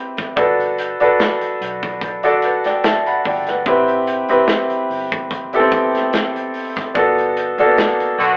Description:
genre	lush 1970s-style soul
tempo	73 BPM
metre	4/4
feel	swing 54% on 16ths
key	unclear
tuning	A4 = 438 Hz
part	bright concert grand piano	accompaniment	0.0-8.4 s	Bb3 to B5	-18 LUFS	equal	none
part	modern studio drum kit	drums	0.2-8.4 s	hi-hat, kick drum, snare drum	-25 LUFS	equal	none
part	vintage muted fingered electric bass	bass	0.4-8.4 s	G1 to B1	-42 LUFS	equal	none
part	tambourine	percussion	1.2-8.0 s	none	barely audible	none	none
part	warm horn section	stabs	8.2-8.4 s	D3 to F#4	-16 LUFS	equal	none
room	moderate small room reverb, RT60 0.5 s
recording	rough rehearsal-room recording, telephone sound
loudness	-17 LUFS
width	mono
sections	0.0-8.4 A section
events	band accent 7.0-8.4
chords	0.4 Gmaj7; 3.7 Am7; 7.0 Gmaj7

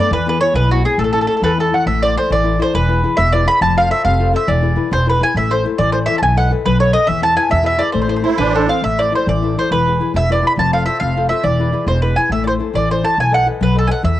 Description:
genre	italian folk, Italian serenade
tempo	138 BPM (dotted quarters)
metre	6/8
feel	straight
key	A harmonic minor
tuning	A4 = 440 Hz
part	mandolin	melody	0.0-14.2 s	F#4 to B5	-16 LUFS	right 1 dB	cassette tape
part	nylon-string guitar	accompaniment	0.0-14.2 s	B2 to D#5	-20 LUFS	left 7 dB	cassette tape
part	upright bass	bass	0.1-14.2 s	E1 to E2	-18 LUFS	right 1 dB	tube saturation
part	musette accordion	second line	8.2-8.8 s	C4 to E4	-19 LUFS	right 8 dB	cassette tape
room	light reverb, small room ambience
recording	home recording on cassette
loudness	-13 LUFS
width	side -13 dB against mid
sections	0.0-1.9 A section; 1.9-8.8 B section; 8.8-14.2 B section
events	none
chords	0.1 E; 1.0 A; 1.9 Am; 2.7 E; 3.6 F; 4.5 E; 5.3 Am; 6.2 B7; 7.1 E; 8.0 Am; 9.7 E; 10.6 F; 11.4 E; 12.3 Am; 13.2 B7

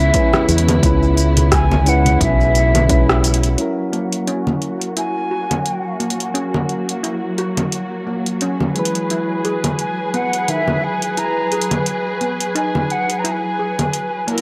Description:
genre	sunset chillout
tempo	87 BPM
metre	4/4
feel	swing 57% on 16ths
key	unclear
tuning	A4 = 440 Hz
part	mellow wooden flute	melody	0.0-14.3 s	E5 to A#5	-24 LUFS	equal	digital delay
part	soft electric-piano-like synth keys	accompaniment	0.0-14.3 s	E3 to B4	-26 LUFS	equal	chorus, tape echo
part	dark symphonic string section	sustained chords	0.0-14.4 s	C#3 to B4	-26 LUFS	equal	vintage 12-bit sampler grit, low-pass filter
part	modern bright fingered electric bass	bass	0.0-3.5 s	B1 to E2	-18 LUFS	equal	none
part	electronic kick drum	drums	0.1-3.1 s	none	-22 LUFS	equal	overdrive
part	smooth R&B drum kit	drums	0.1-14.4 s	congas, hi-hat, rim click, shaker	-22 LUFS	equal	none
part	congas	percussion	0.3-2.2 s	none	-26 LUFS	equal	none
part	steel pan	arpeggios	3.9-14.4 s	D#3 to G#4	-28 LUFS	equal	low-pass filter, tape echo
room	light reverb, studio reverb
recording	none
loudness	-18 LUFS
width	mono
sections	0.0-3.6 A section; 3.6-14.4 B section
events	band accent 3.1-3.4; filter sweep on string section 3.6-14.4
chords	0.0 C#m7; 3.6 F#7; 8.8 E

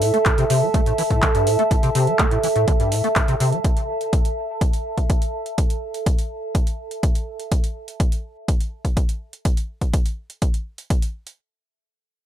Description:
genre	acid house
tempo	124 BPM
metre	4/4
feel	straight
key	A minor pentatonic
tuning	A4 = 440 Hz
part	acid bass, square	riff	0.0-3.6 s	G2 to A3	-22 LUFS	left 1 dB	overdrive, ensemble chorus, sidechain pumping
part	electro analog drum machine	drums	0.0-11.4 s	handclaps, hi-hat	-27 LUFS	equal	none
part	warbly tape-like pad	texture	0.0-7.5 s	A4 to A5	-23 LUFS	right 2 dB	chorus, built-in reverb, sidechain pumping
part	electronic kick drum	drums	0.3-11.0 s	none	-20 LUFS	equal	none
room	light reverb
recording	none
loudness	-19 LUFS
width	side -10 dB against mid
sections	0.0-11.4 A section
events	none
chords	0.0 A5

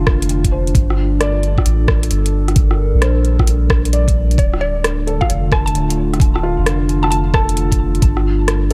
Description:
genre	future garage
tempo	132 BPM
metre	4/4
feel	swing 66% on 16ths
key	G minor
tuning	A4 = 440 Hz
part	felt-muted upright piano	accompaniment	0.0-8.7 s	F4 to D5	-30 LUFS	equal	sidechain pumping, analog delay
part	warbly tape-like pad	sustained chords	0.0-8.7 s	D3 to Bb4	-24 LUFS	equal	chorus, built-in reverb, vintage 12-bit sampler grit, sidechain pumping
part	soft dub sub bass	bass	0.0-8.7 s	D1 to Bb1	-19 LUFS	equal	none
part	electronic kick drum	drums	0.1-8.1 s	none	-18 LUFS	equal	none
part	garage drum kit	drums	0.1-8.7 s	hi-hat, rim click	-24 LUFS	equal	none
part	mallet-like synth pluck	melody	4.4-8.0 s	D5 to A5	-27 LUFS	equal	chorus, vintage 12-bit sampler grit, tape echo
room	light reverb, digital ambience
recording	none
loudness	-15 LUFS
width	mono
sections	0.0-8.7 A section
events	none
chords	0.0 Dm7; 0.8 Gm7; 4.4 Dm; 8.0 G7(no3)

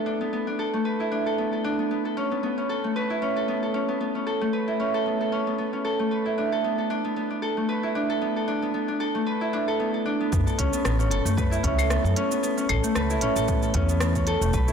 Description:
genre	organic downtempo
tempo	114 BPM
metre	4/4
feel	swing 55% on 16ths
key	B minor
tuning	A4 = 441 Hz
part	Celtic harp	arpeggios	0.0-14.7 s	A3 to B4	-24 LUFS	equal	tape echo
part	upright bass	bass	10.3-14.6 s	E1 to F#2	-25 LUFS	equal	tube saturation, sidechain pumping
part	deep house drum kit	drums	10.3-14.7 s	claves, hi-hat, rim click, shaker	-31 LUFS	equal	low-pass filter on perc, low-pass filter on hats, low-pass filter on snare, low-pass filter on room
part	electronic kick drum	drums	10.3-14.7 s	none	-27 LUFS	equal	none
room	moderate echo chamber reverb, RT60 2.5 s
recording	blown-out, overdriven recording, overdrive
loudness	-23 LUFS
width	side -7 dB against mid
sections	0.0-10.3 A section; 10.3-14.7 B section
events	none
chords	0.0 Bm; 1.9 Aadd9; 10.3 F#m; 12.4 A

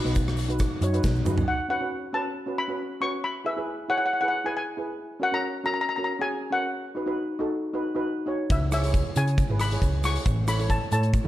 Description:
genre	calypso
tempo	137 BPM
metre	4/4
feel	straight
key	unclear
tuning	A4 = 440 Hz
part	steel pan	accompaniment	0.0-11.3 s	C#4 to C#5	-30 LUFS	right 1 dB	none
part	hollow-body short-scale picked electric bass	bass	0.1-1.4, 8.5-11.3 s	G#1 to C#3	-25 LUFS	equal	none
part	gated 80s drum kit	drums	0.1-1.5, 8.5-11.2 s	hi-hat, kick drum, rim click, snare drum, toms	-27 LUFS	equal	none
part	egg shaker	percussion	0.1-1.4, 8.5-11.2 s	none	-45 LUFS	right 8 dB	none
part	steel pan	melody	1.5-11.3 s	E5 to C#6	-27 LUFS	left 2 dB	none
room	moderate recital hall reverb, RT60 1.5 s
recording	dark, warm production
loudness	-24 LUFS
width	side -14 dB against mid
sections	0.0-1.5 A section; 1.5-11.3 B section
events	drum fill 1.0-1.5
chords	0.0 B; 1.5 Bsus2; 3.2 E; 5.0 F#; 6.7 Badd9; 8.5 C#m7; 10.3 Aadd9

